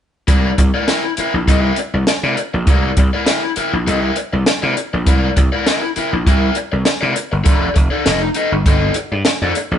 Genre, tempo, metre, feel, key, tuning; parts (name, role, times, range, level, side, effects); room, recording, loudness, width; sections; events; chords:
funk; 100 BPM; 4/4; straight; C mixolydian; A4 = 440 Hz
raw garage guitar; accompaniment; 0.3-9.8 s; Eb4 to E5; -19 LUFS; left 2 dB; overdrive
gritty slap bass; bass; 0.3-9.8 s; F1 to C3; -18 LUFS; equal; overdrive
compact cocktail drum kit; drums; 0.3-9.7 s; hi-hat, kick drum, snare drum; -15 LUFS; equal
moderate studio reverb, RT60 0.8 s; band playing live in one room, nothing above 10.9 kHz; -13 LUFS; side -9 dB against mid
0.3-9.8 A section
0.3 C9; 7.5 F13